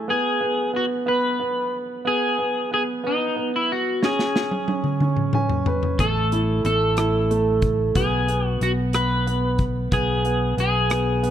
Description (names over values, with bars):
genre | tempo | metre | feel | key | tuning
six-eight pop ballad | 61 BPM (dotted quarters) | 6/8 | straight | unclear | A4 = 440 Hz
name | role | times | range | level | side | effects
electric guitar at the edge of break-up | melody | 0.0-11.3 s | D#4 to B4 | -24 LUFS | left 2 dB | analog chorus
clear grand piano | accompaniment | 0.0-11.3 s | A3 to G#5 | -24 LUFS | right 3 dB | none
modern studio drum kit | drums | 4.0-11.3 s | hi-hat, kick drum, rim click, snare drum, toms | -24 LUFS | equal | none
fingered electric bass | bass | 6.0-11.3 s | A1 to B1 | -23 LUFS | left 1 dB | none
room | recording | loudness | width
small room ambience | none | -19 LUFS | side -10 dB against mid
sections
0.0-11.3 A section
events
drum fill 4.0-6.0; grand piano fill 5.0-6.0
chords
0.1 N.C.; 6.0 A5; 8.0 G#m/B